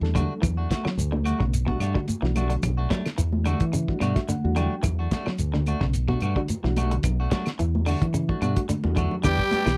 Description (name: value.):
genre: afrobeat.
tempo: 109 BPM.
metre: 4/4.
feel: swing 54% on 16ths.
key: E dorian.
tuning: A4 = 439 Hz.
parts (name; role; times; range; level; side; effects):
reed electric piano; accompaniment; 0.0-9.2 s; G3 to G5; -34 LUFS; equal; fast tremolo.
electric guitar at the edge of break-up; arpeggios; 0.0-9.8 s; B2 to F#3; -32 LUFS; equal; harmonic tremolo.
fingered electric bass; bass; 0.0-9.8 s; B1 to E3; -28 LUFS; equal; none.
cloth-damped thuddy drum kit; drums; 0.0-9.8 s; crash cymbal, hi-hat, kick drum, snare drum; -30 LUFS; equal; none.
clean electric guitar; stabs; 0.1-9.7 s; G3 to G4; -34 LUFS; equal; none.
claves; percussion; 0.2-9.8 s; none; -41 LUFS; equal; none.
congas; percussion; 0.2-9.7 s; none; -34 LUFS; equal; none.
shekere; percussion; 0.2-9.8 s; none; -34 LUFS; equal; none.
growling tenor saxophone; melody; 9.2-9.8 s; G4; -26 LUFS; equal; none.
bright bass trombone; second line; 9.2-9.8 s; G3; -36 LUFS; equal; none.
trombone with bucket mute; second line; 9.3-9.8 s; G3; -37 LUFS; equal; none.
room: little or no reverb.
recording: dry, close 1970s-style studio recording.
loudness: -25 LUFS.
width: mono.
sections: 0.0-9.2 A section.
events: reed electric piano fill 3.7-4.8; drum fill 8.8-9.2.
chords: 0.0 Em11; 9.2 Em7.